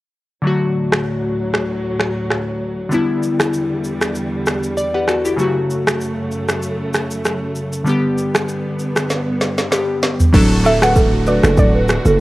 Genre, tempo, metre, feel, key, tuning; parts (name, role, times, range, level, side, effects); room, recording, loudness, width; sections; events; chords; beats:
afrobeats; 97 BPM; 4/4; swing 55% on 16ths; D major; A4 = 442 Hz
glassy digital keys; accompaniment; 0.4-12.2 s; C#3 to F#5; -20 LUFS; left 2 dB; chorus
warm studio string section; sustained chords; 0.4-12.2 s; D2 to F#4; -24 LUFS; right 1 dB
afro-pop drum kit; drums; 0.9-12.2 s; crash cymbal, finger snaps, kick drum, rim click, shaker, snare drum, toms; -17 LUFS; equal; cassette tape
hard-hitting 808-style bass; bass; 10.3-12.2 s; D1 to F#1; -16 LUFS; equal
downlifter; sound effects; 10.3-12.2 s; -30 LUFS; right 2 dB
soft round pluck; melody; 10.7-12.2 s; D5 to F#5; -19 LUFS; right 1 dB; chorus, cassette tape
balafon; riff; 10.7-12.2 s; A4 to B4; -18 LUFS; right 3 dB; analog delay
light reverb, digital ambience; home recording on cassette; -15 LUFS; side -18 dB against mid
0.4-10.3 A section; 10.3-12.2 B section
synth keys fill 4.5-5.4; drum fill 9.1-10.3
0.4 D; 2.9 Em7; 5.4 F#m; 7.9 G; 10.3 D
| 0.44 1.06 1.68 2.30 | 2.92 3.54 4.15 4.77 | 5.39 6.01 6.63 7.25 | 7.87 8.48 9.10 9.72 | 10.34 10.96 11.58 12.20